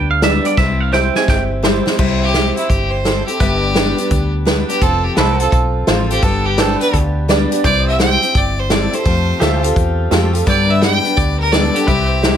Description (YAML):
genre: honky-tonk and classic country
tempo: 170 BPM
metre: 4/4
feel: swing 64% on 8ths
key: C major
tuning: A4 = 440 Hz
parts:
  - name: twangy electric guitar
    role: second line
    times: 0.0-1.4 s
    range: D5 to Ab5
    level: -18 LUFS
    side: right 5 dB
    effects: tape echo
  - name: picked steel-string acoustic guitar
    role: accompaniment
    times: 0.0-12.4 s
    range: G2 to A4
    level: -21 LUFS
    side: left 5 dB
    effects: none
  - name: pedal steel guitar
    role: sustained chords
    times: 0.0-12.4 s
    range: G4 to G5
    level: -25 LUFS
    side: right 2 dB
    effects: none
  - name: vintage muted fingered electric bass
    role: bass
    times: 0.0-12.4 s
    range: F1 to G2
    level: -18 LUFS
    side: equal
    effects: none
  - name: honky-tonk upright piano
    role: accompaniment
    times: 0.2-12.4 s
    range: D4 to D5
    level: -22 LUFS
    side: right 6 dB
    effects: none
  - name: unplugged drum kit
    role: drums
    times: 0.2-12.3 s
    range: crash cymbal, hi-hat, kick drum, snare drum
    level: -18 LUFS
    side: equal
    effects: none
  - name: clear fiddle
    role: melody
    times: 2.2-12.4 s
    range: E4 to G5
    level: -18 LUFS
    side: right 1 dB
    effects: none
room: little or no reverb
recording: none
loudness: -12 LUFS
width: side -9 dB against mid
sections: 0.0-2.0 A section; 2.0-12.4 A section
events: clean electric guitar solo 0.0-2.0; drum fill 0.6-2.0; fiddle solo 2.0-12.4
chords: 0.0 G; 0.6 C; 3.4 G; 4.8 F; 6.2 G; 7.6 C; 9.1 Fadd9; 10.5 G